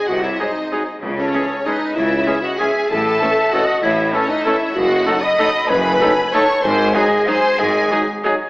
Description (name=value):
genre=classical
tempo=192 BPM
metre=3/4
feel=uneven beats, rubato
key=C# minor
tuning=A4 = 440 Hz
part: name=rich studio violin section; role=melody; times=0.0-8.1 s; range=C#5 to D#6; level=-24 LUFS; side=left 1 dB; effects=none
part: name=dark clarinet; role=second line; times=0.0-8.1 s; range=C#4 to D#5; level=-21 LUFS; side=equal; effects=none
part: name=rich studio violin section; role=second line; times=0.0-8.1 s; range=C#4 to D#5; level=-22 LUFS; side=equal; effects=none
part: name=small flute group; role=second line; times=0.0-8.1 s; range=A4 to B5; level=-22 LUFS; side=equal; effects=none
part: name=mellow tuba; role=bass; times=0.1-7.9 s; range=F#1 to C#2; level=-26 LUFS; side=equal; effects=none
part: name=rich studio cello section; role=bass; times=0.1-7.9 s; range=F#2 to C#3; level=-26 LUFS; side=equal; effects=none
part: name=rich studio double bass section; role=bass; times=0.1-7.9 s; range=F#1 to C#2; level=-30 LUFS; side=equal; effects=none
part: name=bright studio viola section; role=accompaniment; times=0.4-8.3 s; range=F#3 to D#4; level=-28 LUFS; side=equal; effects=none
part: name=mellow French horn section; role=sustained chords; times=0.4-8.4 s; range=E3 to D#4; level=-27 LUFS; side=equal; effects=none
part: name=warm trumpet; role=stabs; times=0.4-8.4 s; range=G#4 to A4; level=-23 LUFS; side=equal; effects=none
part: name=timpani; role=percussion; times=1.0-1.5 s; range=C#3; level=-36 LUFS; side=equal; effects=none
room=wet scoring stage reverb, RT60 1.9 s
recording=AM radio sound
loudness=-14 LUFS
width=side -22 dB against mid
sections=0.0-8.5 A section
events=none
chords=0.0 G#7/B#; 1.0 C#m; 2.9 A; 4.8 D#dim/F#; 6.6 G#7